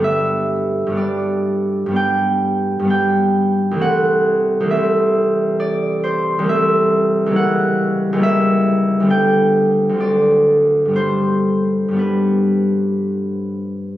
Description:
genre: classical, solo harp piece.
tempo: 59-69 BPM.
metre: 4/4.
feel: rubato.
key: G major.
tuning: A4 = 440 Hz.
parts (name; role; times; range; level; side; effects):
concert harp; solo; 0.0-14.0 s; C2 to G5; -14 LUFS; equal; none.
room: wet recital hall reverb, RT60 1.6 s.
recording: recorded on a phone in the room, studio ambience.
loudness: -14 LUFS.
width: side -14 dB against mid.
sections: 0.0-14.0 A section.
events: none.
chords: 0.0 G; 3.8 Am/C; 7.4 C#dim7; 9.1 G/D; 11.0 G.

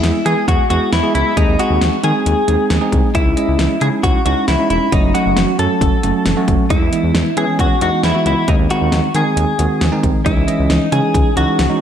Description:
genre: synth-pop.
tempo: 135 BPM.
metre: 4/4.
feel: straight.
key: E major.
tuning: A4 = 439 Hz.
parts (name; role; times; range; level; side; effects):
direct-recorded clean electric guitar; melody; 0.0-11.8 s; D#4 to A4; -18 LUFS; left 1 dB; analog chorus, ping-pong delay.
bell-like tine electric piano; accompaniment; 0.0-11.8 s; D#3 to D#5; -18 LUFS; right 3 dB; medium stereo tremolo.
smooth synth bass; bass; 0.0-11.7 s; E1 to E3; -18 LUFS; left 1 dB; none.
pop drum kit; drums; 0.0-11.7 s; hi-hat, kick drum, snare drum; -18 LUFS; left 1 dB; none.
room: moderate plate reverb, RT60 1.6 s.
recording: dreamy mix soaked in reverb.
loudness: -12 LUFS.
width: side -9 dB against mid.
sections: 0.0-11.8 A section.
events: none.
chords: 0.0 E; 1.4 G#/D#; 3.1 C#madd9; 4.9 F#m; 6.7 E; 8.5 G#/D#; 10.3 C#madd9.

